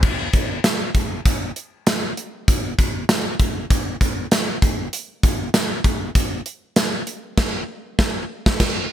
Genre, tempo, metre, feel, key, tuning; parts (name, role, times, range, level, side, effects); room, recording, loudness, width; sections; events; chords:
pop; 98 BPM; 4/4; swing 55% on 16ths
gated 80s drum kit; drums; 0.0-8.8 s; crash cymbal, hi-hat, kick drum, snare drum, tambourine; -18 LUFS; equal
light reverb; bright 1980s-style digital production; -19 LUFS; side -11 dB against mid
0.0-8.9 A section
band accent 7.4-8.9